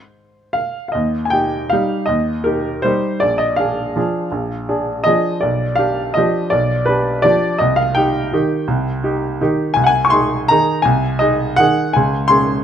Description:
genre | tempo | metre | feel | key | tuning
classical, piano waltz | 144-175 BPM | 3/4 | rubato | Eb major | A4 = 439 Hz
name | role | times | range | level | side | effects
clear baby grand piano | solo | 0.0-12.6 s | Bb1 to Db6 | -14 LUFS | equal | none
room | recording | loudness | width
light reverb | close, detailed microphones | -14 LUFS | side -9 dB against mid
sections
0.9-12.6 A section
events
none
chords
0.0 N.C.; 0.9 Eb; 3.2 Bb7; 5.4 G7/B; 7.6 Cm; 9.8 Ab/C; 11.9 Db5

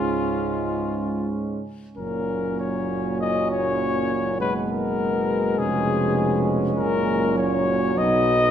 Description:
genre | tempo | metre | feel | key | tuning
classical, brass quintet | 92-103 BPM | 4/4 | rubato | F# major | A4 = 439 Hz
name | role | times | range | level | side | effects
mellow cornet | melody | 0.0-8.5 s | E#4 to D#5 | -25 LUFS | left 5 dB | none
mellow flugelhorn | second line | 0.0-8.5 s | B3 to D#4 | -29 LUFS | right 9 dB | none
clear euphonium | accompaniment | 0.0-8.5 s | G#2 to B2 | -30 LUFS | right 3 dB | none
mellow French horn | accompaniment | 0.0-8.5 s | F#3 to G#3 | -28 LUFS | left 3 dB | none
mellow tuba | bass | 0.0-8.5 s | E#1 to C#2 | -28 LUFS | right 3 dB | none
room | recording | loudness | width
wet recital hall reverb, RT60 1.6 s | none | -21 LUFS | side -9 dB against mid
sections
0.0-2.0 A section; 2.0-8.5 B section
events
none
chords
0.0 C#; 2.0 F#; 4.4 G#m7/F#; 5.6 C#7/E#; 6.8 F#; 8.0 B

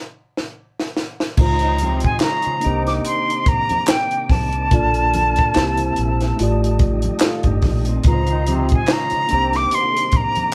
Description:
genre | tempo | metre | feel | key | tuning
R&B, neo-soul | 72 BPM | 4/4 | swing 57% on 16ths | C dorian | A4 = 440 Hz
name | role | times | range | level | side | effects
compact cocktail drum kit | drums | 0.4-10.5 s | crash cymbal, handclaps, hi-hat, kick drum, snare drum | -22 LUFS | equal | none
bright concert flute | melody | 1.4-10.5 s | G5 to D6 | -22 LUFS | equal | none
mellow tine electric piano | accompaniment | 1.4-10.5 s | Db3 to D5 | -27 LUFS | equal | none
tonewheel organ | sustained chords | 1.4-10.5 s | C3 to D5 | -34 LUFS | equal | chorus vibrato, fast rotary speaker
deep dub fingered electric bass | bass | 1.4-9.7 s | G1 to Db2 | -23 LUFS | equal | none
congas | percussion | 1.4-10.5 s | none | -34 LUFS | equal | none
bright trombone section | stabs | 1.6-10.1 s | C3 to Eb4 | -30 LUFS | equal | none
nylon-string guitar | second line | 7.2-8.3 s | C4 to A4 | -30 LUFS | equal | none
room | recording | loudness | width
moderate studio ambience, RT60 0.5 s | band playing live in one room | -18 LUFS | mono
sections
0.0-1.4 A section; 1.4-10.5 B section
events
drum fill 0.0-1.4; stop 0.0-1.4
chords
0.0 N.C.; 1.4 Dbmaj9; 2.6 Cm9; 4.7 Bbmaj7; 5.5 C7; 6.4 F13/A; 8.0 Dbmaj9; 9.3 Cm9

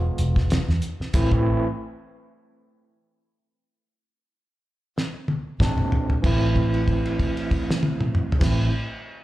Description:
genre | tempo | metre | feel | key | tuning
straight-eighth soul blues | 94 BPM | 4/4 | swing 55% on 16ths | A minor | A4 = 445 Hz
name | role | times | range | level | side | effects
overdriven tine electric piano | accompaniment | 0.0-1.7, 5.6-8.7 s | E3 to F4 | -26 LUFS | right 2 dB | fast tremolo, slapback echo
vintage muted fingered electric bass | bass | 0.0-1.6, 5.6-8.7 s | E1 to Bb2 | -23 LUFS | equal | none
cloth-damped thuddy drum kit | drums | 0.2-8.6 s | crash cymbal, hi-hat, kick drum, snare drum, toms | -24 LUFS | equal | none
room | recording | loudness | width
small room ambience | live gig heard through the venue's PA, club reverb | -20 LUFS | side -16 dB against mid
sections
0.0-6.2 A section; 6.2-8.8 B section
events
stop 1.1-5.6; drum fill 5.0-6.2; held note 6.2-8.4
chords
0.0 E(b9); 1.1 Am; 5.6 Bb7; 6.2 Am

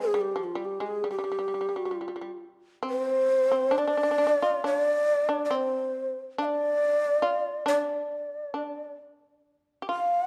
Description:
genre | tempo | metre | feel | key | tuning
japanese traditional, Japanese chamber music | 68 BPM | 2/4 | rubato | unclear | A4 = 440 Hz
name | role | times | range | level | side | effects
breathy mellow long shakuhachi | melody | 0.0-10.3 s | F4 to F5 | -28 LUFS | equal | none
shamisen | second line | 0.0-10.3 s | F3 to G4 | -35 LUFS | equal | none
room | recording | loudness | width
moderate recital hall reverb, RT60 1.4 s | dark, warm production | -27 LUFS | mono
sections
0.0-2.9 A section; 2.9-10.3 B section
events
none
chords
none

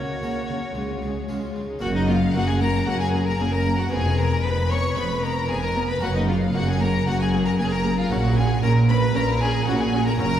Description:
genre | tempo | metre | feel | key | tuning
classical, baroque-style concerto movement with solo episodes | 115 BPM | 4/4 | straight | F# major | A4 = 440 Hz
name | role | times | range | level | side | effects
rich chamber violin section | melody | 0.0-10.4 s | C#4 to C#6 | -33 LUFS | left 3 dB | none
warm violin | melody | 0.0-10.4 s | D#4 to C#5 | -27 LUFS | left 2 dB | none
rich chamber violin section | second line | 0.0-10.4 s | F#4 to C#6 | -32 LUFS | left 2 dB | none
harpsichord | accompaniment | 0.0-10.4 s | E#2 to F#4 | -33 LUFS | equal | none
warm chamber viola section | accompaniment | 0.0-10.3 s | G#3 to C#4 | -30 LUFS | equal | none
warm chamber cello section | bass | 0.0-10.4 s | E#2 to C#3 | -26 LUFS | right 1 dB | none
warm chamber double bass section | bass | 0.0-10.4 s | E#1 to C#2 | -24 LUFS | right 1 dB | none
room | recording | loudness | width
wet concert hall reverb, RT60 2.4 s | heard from further back in the room | -20 LUFS | side -10 dB against mid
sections
0.0-1.8 A section; 1.8-10.4 B section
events
none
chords
0.0 F#/C#; 0.8 C#; 1.8 F#; 3.9 C#7/E#; 6.0 F#; 8.1 F#/A#

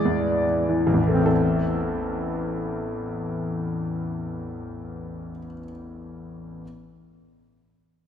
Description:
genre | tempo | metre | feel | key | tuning
classical, romantic nocturne for solo piano | 38 BPM (dotted quarters) | 6/8 | rubato | A minor | A4 = 439 Hz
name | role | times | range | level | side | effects
warm concert grand piano | solo | 0.0-6.6 s | A1 to D5 | -24 LUFS | equal | none
room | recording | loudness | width
wet concert hall reverb, RT60 2.4 s | recorded in a church or concert hall | -22 LUFS | side -8 dB against mid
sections
0.0-1.3 A section; 1.3-4.4 B section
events
slowing down 0.0-1.3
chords
0.0 E7/A; 1.3 Am

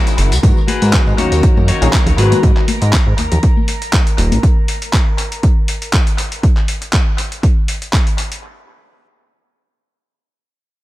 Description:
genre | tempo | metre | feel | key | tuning
filtered disco house | 120 BPM | 4/4 | swing 54% on 16ths | G# minor | A4 = 440 Hz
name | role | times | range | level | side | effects
warm studio violin section | sustained chords | 0.0-6.4 s | F#4 to A#5 | -28 LUFS | equal | vintage 12-bit sampler grit, sidechain pumping, low-pass filter
semi-hollow electric guitar | riff | 0.0-2.4 s | D#4 to C#5 | -23 LUFS | left 5 dB | sidechain pumping, low-pass filter, analog delay
dusty soul sampler-style drum kit | drums | 0.1-8.4 s | handclaps, hi-hat, tambourine | -21 LUFS | equal | overdrive, sidechain pumping on hats, sidechain pumping on perc, analog delay
tambourine and congas | percussion | 0.1-4.4 s | none | -24 LUFS | left 3 dB | sidechain pumping on perc, low-pass filter on perc
fat analog bass | bass | 0.2-4.4 s | D#1 to G#2 | -14 LUFS | equal | tube saturation, sidechain pumping, low-pass filter
warm concert grand piano | accompaniment | 0.4-2.4 s | D#3 to G#4 | -20 LUFS | left 2 dB | phaser, vintage 12-bit sampler grit, sidechain pumping, low-pass filter, analog delay
electronic kick drum | drums | 0.4-8.0 s | none | -13 LUFS | equal | none
room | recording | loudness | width
small room reverb | echo-heavy mix | -12 LUFS | side -17 dB against mid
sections
0.4-8.4 A section; 8.4-10.8 B section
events
none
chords
0.4 G#m7; 1.2 D#m7; 2.2 G#m7; 3.2 D#5; 4.4 N.C.

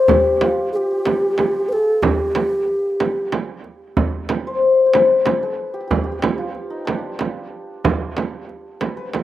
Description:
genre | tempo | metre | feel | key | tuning
Persian modal ensemble | 62 BPM (dotted quarters) | 6/8 | straight | G dastgah homayun | A4 = 443 Hz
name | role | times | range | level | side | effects
santur | melody | 0.0-9.2 s | D4 to D5 | -19 LUFS | left 4 dB | slapback echo
bass ocarina | second line | 0.0-3.3 s | G4 to C5 | -19 LUFS | right 1 dB | none
frame drum | percussion | 0.1-9.2 s | none | -22 LUFS | right 5 dB | slapback echo
tombak | percussion | 0.1-9.2 s | none | -25 LUFS | equal | none
room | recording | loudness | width
little or no reverb | recorded outdoors, with no room sound | -17 LUFS | side -13 dB against mid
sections
0.0-4.0 A section; 4.0-9.2 B section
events
none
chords
none

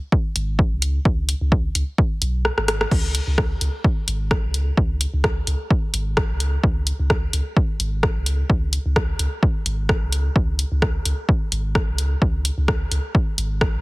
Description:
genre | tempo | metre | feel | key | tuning
minimal techno | 129 BPM | 4/4 | swing 55% on 16ths | unclear | A4 = 440 Hz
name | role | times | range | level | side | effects
electronic kick drum | drums | 0.1-13.7 s | none | -20 LUFS | equal | overdrive
punchy sub bass | bass | 0.4-13.8 s | G#1 to C#2 | -22 LUFS | equal | sidechain pumping
punchy analog drum machine | drums | 0.4-13.7 s | crash cymbal, hi-hat, rim click | -24 LUFS | equal | overdrive
room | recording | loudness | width
little or no reverb | heavily compressed radio sound, multiband compression | -19 LUFS | side -23 dB against mid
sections
0.0-13.8 A section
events
kick drops out 2.5-2.9; drum fill 2.5-2.9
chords
none

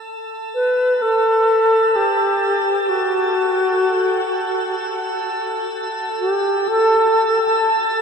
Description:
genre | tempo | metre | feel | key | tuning
ambient | free time | none | none | unclear | A4 = 444 Hz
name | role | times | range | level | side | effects
drifting glass-harmonics texture | texture | 0.0-8.0 s | A4 to A5 | -25 LUFS | equal | chorus, built-in reverb
bright reedy wooden-headed alto flute | melody | 0.5-7.6 s | F#4 to B4 | -16 LUFS | equal | ping-pong delay
room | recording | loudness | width
wet shimmer reverb, RT60 7.2 s | dark, warm production | -16 LUFS | side -6 dB against mid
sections
0.0-8.0 A section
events
fade-in on synth texture 0.0-8.0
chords
none

